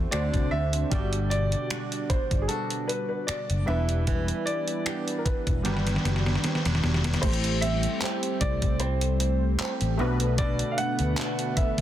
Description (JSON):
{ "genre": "contemporary R&B", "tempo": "76 BPM", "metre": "4/4", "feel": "swing 54% on 16ths", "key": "A dorian", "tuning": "A4 = 440 Hz", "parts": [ { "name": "warm baby grand piano", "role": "melody", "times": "0.0-11.8 s", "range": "G#4 to F#5", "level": "-32 LUFS", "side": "equal", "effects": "tape echo" }, { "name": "warm analog keys", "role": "accompaniment", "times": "0.0-11.8 s", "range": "B2 to D5", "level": "-32 LUFS", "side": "left 1 dB", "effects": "chorus" }, { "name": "flamenco guitar", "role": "arpeggios", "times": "0.0-11.8 s", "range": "B2 to G4", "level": "-35 LUFS", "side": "right 7 dB", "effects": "tape echo" }, { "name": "fingered electric bass", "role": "bass", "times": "0.0-11.8 s", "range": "E1 to D2", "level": "-27 LUFS", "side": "equal", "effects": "none" }, { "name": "detuned 8-bit digital drum machine", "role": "drums", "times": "0.1-11.8 s", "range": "crash cymbal, finger snaps, handclaps, hi-hat, kick drum, snare drum", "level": "-28 LUFS", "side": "equal", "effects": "soft clipping on snare" }, { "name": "lush unison pad", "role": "sustained chords", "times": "7.2-11.8 s", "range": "D3 to C4", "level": "-34 LUFS", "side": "left 1 dB", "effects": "chorus" } ], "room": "digital ambience", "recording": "dense, heavily limited modern master", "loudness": "-24 LUFS", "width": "side -12 dB against mid", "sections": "0.0-7.2 A section; 7.2-11.8 B section", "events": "drum fill 5.7-7.2", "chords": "0.0 D7; 0.9 Gmaj7; 3.7 Em7; 5.7 Gmaj7; 7.2 Am7; 10.0 Bm7" }